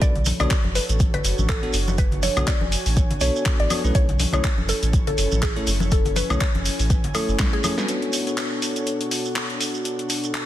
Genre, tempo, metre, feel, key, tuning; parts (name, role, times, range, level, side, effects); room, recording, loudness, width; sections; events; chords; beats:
deep house; 122 BPM; 4/4; swing 56% on 16ths; B dorian; A4 = 441 Hz
mallet-like synth pluck; melody; 0.0-7.7 s; G#4 to D5; -29 LUFS; equal; chorus, phaser, digital delay
airy breathy pad; sustained chords; 0.4-10.5 s; B2 to G#5; -32 LUFS; right 1 dB; chorus, vintage 12-bit sampler grit, sidechain pumping
bell-like tine electric piano; stabs; 0.0-10.5 s; A3 to C#5; -28 LUFS; left 1 dB; sidechain pumping, low-pass filter, ping-pong delay
round analog bass; bass; 0.0-7.5 s; F#1 to B1; -24 LUFS; equal; tube saturation, sidechain pumping
deep house drum kit; drums; 0.0-10.5 s; handclaps, hi-hat, snare drum, woodblock; -27 LUFS; left 2 dB; overdrive
electronic kick drum; drums; 0.0-7.5 s; -22 LUFS; equal; overdrive
shekere; percussion; 0.0-10.5 s; -31 LUFS; right 7 dB
congas; percussion; 0.2-7.8 s; -30 LUFS; left 2 dB; sidechain pumping on perc
light reverb; dense, heavily limited modern master, vinyl crackle; -19 LUFS; side -13 dB against mid
0.0-7.9 A section; 7.9-10.5 B section
drum fill 7.4-7.9; band accent 7.8
0.0 Bm7
| 0.02 0.51 1.00 1.49 | 1.98 2.48 2.97 3.46 | 3.95 4.44 4.93 5.43 | 5.92 6.41 6.90 7.39 | 7.88 8.38 8.87 9.36 | 9.85 10.34